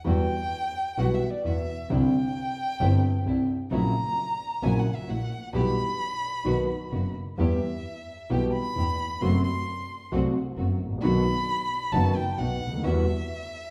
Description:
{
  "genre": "tango",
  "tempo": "132 BPM",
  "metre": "4/4",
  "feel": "rubato",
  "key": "E minor",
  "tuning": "A4 = 440 Hz",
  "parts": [
    { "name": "warm violin", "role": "second line", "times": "0.0-13.7 s", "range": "D5 to C6", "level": "-34 LUFS", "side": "equal", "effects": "none" },
    { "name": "warm concert grand piano", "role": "accompaniment", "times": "0.0-13.0 s", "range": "F#1 to G4", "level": "-30 LUFS", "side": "equal", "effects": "none" },
    { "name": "rich chamber string section", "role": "stabs", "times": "0.1-13.0 s", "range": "G3 to G4", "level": "-38 LUFS", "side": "equal", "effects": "none" },
    { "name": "rich double bass", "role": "bass", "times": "0.1-13.0 s", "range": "F#1 to E2", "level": "-31 LUFS", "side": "equal", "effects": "none" }
  ],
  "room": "wet large studio reverb, RT60 1.4 s",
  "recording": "heard from further back in the room",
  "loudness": "-27 LUFS",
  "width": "mono",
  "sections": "0.1-13.7 A section",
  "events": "violin solo 0.1-13.7",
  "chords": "0.1 Emadd9; 1.9 Cadd9; 3.7 F#7/A#; 5.5 Em/B; 6.5 B; 7.4 Em; 9.2 F#dim; 11.0 B; 12.8 Emadd9",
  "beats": "| 0.05 0.52 0.98 1.44 | 1.90 2.36 2.81 3.26 | 3.71 4.17 4.63 5.08 | 5.54 5.99 6.45 6.91 | 7.38 7.85 8.30 8.76 | 9.22 9.68 10.13 10.58 | 11.03 11.48 11.93 12.39 | 12.84 13.29"
}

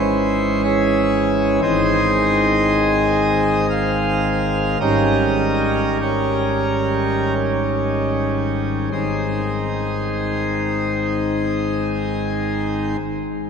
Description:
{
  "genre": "classical, chorale-style piece for pipe organ",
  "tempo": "37-61 BPM",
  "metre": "3/4",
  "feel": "rubato",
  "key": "Ab major",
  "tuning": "A4 = 440 Hz",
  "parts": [
    { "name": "pipe organ, plenum", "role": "solo", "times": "0.0-13.0 s", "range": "Ab1 to F5", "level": "-17 LUFS", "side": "equal", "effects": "none" }
  ],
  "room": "wet cathedral reverb, RT60 4.6 s",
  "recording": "minimal, uncompressed stereo recording",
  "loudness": "-17 LUFS",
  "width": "side -6 dB against mid",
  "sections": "0.0-8.9 A section; 8.9-13.5 B section",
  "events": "slowing down 0.1-8.9",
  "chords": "0.0 Dbm/Ab; 1.6 Ab; 4.8 Eb7/Ab; 8.9 Ab",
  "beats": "0.64 | 1.63 2.65 3.71 | 4.82 6.01 7.37 | 8.94 10.50 12.05"
}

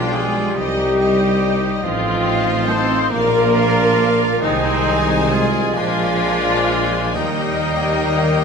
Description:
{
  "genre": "classical",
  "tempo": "41-48 BPM (dotted quarters)",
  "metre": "6/8",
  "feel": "rubato",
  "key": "unclear",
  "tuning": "A4 = 439 Hz",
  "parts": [
    { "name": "rich studio violin section", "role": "melody", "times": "0.0-8.4 s", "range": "Eb5 to Ab5", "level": "-27 LUFS", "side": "left 5 dB", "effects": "none" },
    { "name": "hollow silver concert flute", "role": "second line", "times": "0.0-8.4 s", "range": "Eb5 to C6", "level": "-28 LUFS", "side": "right 1 dB", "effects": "none" },
    { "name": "rich chamber violin section", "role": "second line", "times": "0.0-8.4 s", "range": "C5 to F5", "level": "-29 LUFS", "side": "left 6 dB", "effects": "none" },
    { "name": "warm cor anglais", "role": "second line", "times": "0.0-8.4 s", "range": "D5 to Eb5", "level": "-29 LUFS", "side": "equal", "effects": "none" },
    { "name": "mellow bassoon", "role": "accompaniment", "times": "0.0-8.4 s", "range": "G3 to C4", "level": "-29 LUFS", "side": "equal", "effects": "none" },
    { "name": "rich chamber viola section", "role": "accompaniment", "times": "0.0-8.4 s", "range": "Eb4 to C5", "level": "-21 LUFS", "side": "left 1 dB", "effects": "none" },
    { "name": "mellow French horn section", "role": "sustained chords", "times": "0.0-8.4 s", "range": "G3 to Eb4", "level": "-26 LUFS", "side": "left 6 dB", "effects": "none" },
    { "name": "concert harp", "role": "arpeggios", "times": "0.0-8.4 s", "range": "A2 to Eb5", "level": "-28 LUFS", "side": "left 8 dB", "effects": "none" },
    { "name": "warm trumpet section", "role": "stabs", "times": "0.0-8.4 s", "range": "Bb3 to A4", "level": "-26 LUFS", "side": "right 2 dB", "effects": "none" },
    { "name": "rich chamber cello section", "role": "bass", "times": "0.0-8.4 s", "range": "Eb3 to C4", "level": "-24 LUFS", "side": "right 3 dB", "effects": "none" },
    { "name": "rich chamber double bass section", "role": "bass", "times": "0.0-8.4 s", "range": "A1 to Eb2", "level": "-26 LUFS", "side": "right 5 dB", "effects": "none" },
    { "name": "warm tuba", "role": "bass", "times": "0.0-8.4 s", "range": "A1 to Eb2", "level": "-24 LUFS", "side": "right 3 dB", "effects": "none" },
    { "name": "timpani", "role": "percussion", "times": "7.2-8.4 s", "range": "Eb3", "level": "-25 LUFS", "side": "left 1 dB", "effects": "none" }
  ],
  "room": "wet scoring stage reverb, RT60 1.4 s",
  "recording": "none",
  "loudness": "-15 LUFS",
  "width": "side -6 dB against mid",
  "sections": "0.0-8.4 A section",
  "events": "timpani fill 7.2-8.4",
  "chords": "0.0 G7/B; 0.6 Cm; 1.8 F7/A; 3.1 Bb; 4.4 Ab/C; 5.8 Bb9; 7.2 Eb",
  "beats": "0.57 | 1.83 3.12 | 4.42 5.76 | 7.16"
}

